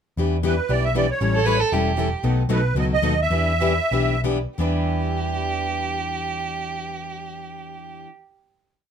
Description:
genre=acoustic string swing (jazz manouche)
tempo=163-234 BPM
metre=4/4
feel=swing 56% on 8ths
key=E dorian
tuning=A4 = 440 Hz
part: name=picked acoustic archtop guitar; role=accompaniment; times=0.2-8.1 s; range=B2 to B4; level=-30 LUFS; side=right 4 dB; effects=none
part: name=picked plugged-in steel-string acoustic guitar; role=accompaniment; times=0.2-8.1 s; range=B2 to A4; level=-27 LUFS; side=left 7 dB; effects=none
part: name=hollow-body short-scale picked electric bass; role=bass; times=0.2-8.0 s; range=E1 to E2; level=-24 LUFS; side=equal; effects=none
part: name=musette accordion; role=melody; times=0.5-4.2 s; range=B4 to E5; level=-23 LUFS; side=right 2 dB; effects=none
part: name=rich violin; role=second line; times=1.3-2.2, 4.6-8.0 s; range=G4 to B4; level=-26 LUFS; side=right 4 dB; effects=none
room=light reverb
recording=minimal, uncompressed stereo recording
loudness=-20 LUFS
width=side -8 dB against mid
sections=0.2-4.6 A section; 4.6-7.5 final chord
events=slowing down 2.2-4.6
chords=0.2 Em7; 1.2 A7; 2.2 B7; 3.3 Em7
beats=| 0.18 0.44 0.70 0.95 | 1.21 1.47 1.73 1.98 | 2.24 2.50 2.76 3.03 | 3.31 3.60 3.91 4.24 | 4.59 4.96 5.32 5.69 | 6.06 6.42 6.79 7.16

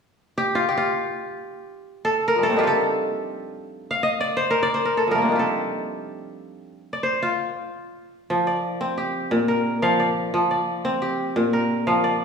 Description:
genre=west african traditional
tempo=free time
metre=none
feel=none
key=F mixolydian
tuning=A4 = 440 Hz
part: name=kora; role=arpeggios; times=0.4-12.2 s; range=Bb2 to F5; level=-21 LUFS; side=equal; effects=none
room=wet recital hall reverb, RT60 1.5 s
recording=heard from further back in the room, studio ambience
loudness=-20 LUFS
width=side -6 dB against mid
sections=0.1-8.3 A section; 8.3-12.2 B section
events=kora solo 0.1-8.3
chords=0.1 F; 8.3 F5; 9.3 Bb; 10.3 F5; 11.4 Bb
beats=free time

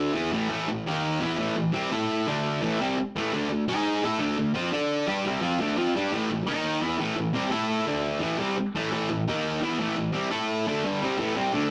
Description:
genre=rock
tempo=171 BPM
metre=4/4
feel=straight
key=unclear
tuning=A4 = 439 Hz
part: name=fuzz guitar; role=solo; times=0.0-11.7 s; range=G2 to D5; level=-27 LUFS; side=equal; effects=distortion
room=moderate studio reverb, RT60 0.5 s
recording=rough rehearsal-room recording, tube saturation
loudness=-27 LUFS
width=mono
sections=0.5-11.7 A section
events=none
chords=0.2 A5; 0.9 D#5; 1.2 A5; 2.3 D5; 2.6 A5; 3.3 D5; 3.7 G#5; 4.0 D5; 6.1 A5; 6.5 D#5; 6.8 A5; 7.9 D5; 8.2 A5; 9.3 D#5; 9.6 A5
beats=0.17 | 0.52 0.87 1.22 1.57 | 1.92 2.27 2.62 2.97 | 3.32 3.67 4.02 4.37 | 4.72 5.08 5.43 5.78 | 6.13 6.48 6.83 7.18 | 7.53 7.88 8.22 8.57 | 8.92 9.27 9.62 9.96 | 10.31 10.66 11.00 11.35 | 11.70

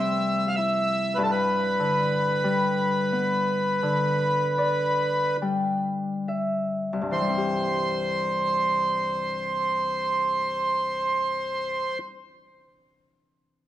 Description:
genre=celtic folk, Celtic slow air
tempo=34-51 BPM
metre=4/4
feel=rubato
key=C major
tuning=A4 = 441 Hz
part: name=accordion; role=melody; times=0.0-12.0 s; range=A4 to F5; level=-24 LUFS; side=right 1 dB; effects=slapback echo
part: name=Celtic harp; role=accompaniment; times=0.0-12.2 s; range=C2 to G5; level=-28 LUFS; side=left 2 dB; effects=none
room=moderate concert hall reverb, RT60 1.9 s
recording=worn, warbling old tape, cassette tape, warbly pitch drift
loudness=-23 LUFS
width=side -12 dB against mid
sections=0.0-7.1 A section; 7.1-13.7 B section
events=slowing down 0.0-7.1; harp fill 3.8-7.1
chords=0.0 C; 1.2 G; 7.1 C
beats=| 1.16 2.42 3.81 5.41 | 7.14 8.85 10.51 12.12

